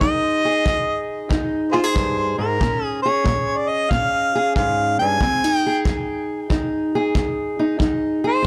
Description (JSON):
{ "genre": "acoustic country blues, solo or duo", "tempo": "92 BPM", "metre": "4/4", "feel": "swing 68% on 8ths", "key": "F minor", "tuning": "A4 = 439 Hz", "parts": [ { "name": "warm harmonica", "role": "melody", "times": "0.0-8.5 s", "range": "F4 to Ab5", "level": "-23 LUFS", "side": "equal", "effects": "analog delay" }, { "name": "fingerpicked steel-string acoustic guitar", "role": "accompaniment", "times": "0.0-8.5 s", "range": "F2 to Ab4", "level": "-24 LUFS", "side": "equal", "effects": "none" }, { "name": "kick drum", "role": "drums", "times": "0.0-8.5 s", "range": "none", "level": "-26 LUFS", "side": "equal", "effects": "none" } ], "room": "light reverb", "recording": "dry, gritty hardware recording", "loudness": "-20 LUFS", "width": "mono", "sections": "0.0-8.5 A section", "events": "none", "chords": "0.0 Fm7; 2.6 Bbm7; 5.2 Fm7" }